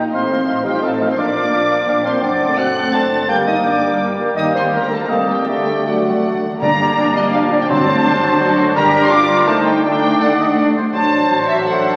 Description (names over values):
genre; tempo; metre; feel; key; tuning
quick classical-period movement for symphony orchestra; 168 BPM; 3/4; rubato; G minor; A4 = 444 Hz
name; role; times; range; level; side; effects
clear oboe; second line; 0.0-12.0 s; Bb4 to A5; -26 LUFS; equal; none
dark studio violin section; second line; 0.0-12.0 s; A3 to D6; -28 LUFS; equal; none
mellow silver concert flute; second line; 0.0-12.0 s; Bb4 to D6; -28 LUFS; equal; none
warm bassoon; accompaniment; 0.0-12.0 s; F#3 to Eb4; -24 LUFS; equal; none
warm studio viola section; accompaniment; 0.0-12.0 s; D3 to Eb4; -24 LUFS; equal; none
rich studio cello section; bass; 0.0-12.0 s; C2 to A4; -27 LUFS; equal; none
warm studio double bass section; bass; 0.0-12.0 s; F#1 to A2; -34 LUFS; equal; none
rich studio violin section; melody; 0.1-12.0 s; Eb5 to A6; -25 LUFS; equal; none
warm clarinet; second line; 0.1-12.0 s; D4 to A5; -24 LUFS; equal; none
dark French horn section; sustained chords; 0.1-12.0 s; F#3 to A4; -26 LUFS; equal; none
clear trumpet; stabs; 6.6-12.0 s; Bb4 to D5; -24 LUFS; equal; none
timpani; percussion; 6.6-9.3 s; G2; -29 LUFS; equal; none
room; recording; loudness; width
wet concert hall reverb, RT60 2.1 s; very old 78 rpm record, vinyl crackle; -16 LUFS; mono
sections
0.0-6.6 A section; 6.6-12.0 B section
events
none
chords
0.1 F7/A; 1.2 Bb; 2.2 D7/F#; 3.3 Gm; 4.4 Eb; 5.1 Cm7; 5.5 D; 6.6 Gm; 7.7 D7; 8.8 Gm; 9.5 Adim/C; 9.8 D; 10.9 D7/A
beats
| 0.13 0.48 0.83 | 1.18 1.53 1.88 | 2.23 2.59 2.94 | 3.30 3.66 4.01 | 4.38 4.74 5.11 | 5.49 5.87 6.25 | 6.62 6.99 7.34 | 7.70 8.06 8.41 | 8.77 9.12 9.48 | 9.84 10.21 10.58 | 10.95 11.31 11.66